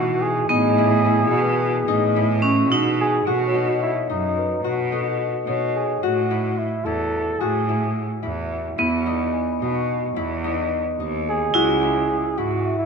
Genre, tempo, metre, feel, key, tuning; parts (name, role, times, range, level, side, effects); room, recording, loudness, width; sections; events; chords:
contemporary instrumental, chamber music in an uneven meter; 217 BPM (eighths); 5/8; straight; A4 = 438 Hz
breathy flugelhorn; melody; 0.0-8.0, 11.3-12.9 s; D#4 to A4; -24 LUFS; right 2 dB
vibraphone with hard mallets; second line; 0.0-3.2, 8.8-12.9 s; B3 to E4; -24 LUFS; right 4 dB
Celtic harp; arpeggios; 0.0-12.9 s; E3 to F#4; -25 LUFS; left 6 dB
clear cello; bass; 0.0-12.8 s; C#2 to B2; -25 LUFS; right 3 dB
large celesta; texture; 0.0-12.9 s; E4 to C#6; -31 LUFS; left 6 dB
wet recital hall reverb, RT60 1.6 s; -19 LUFS; side -5 dB against mid
0.0-3.3 A section; 3.3-12.9 B section
0.0 Emaj7/A; 3.3 B9; 6.0 Amaj7(no3); 8.8 Emaj7; 11.5 C#m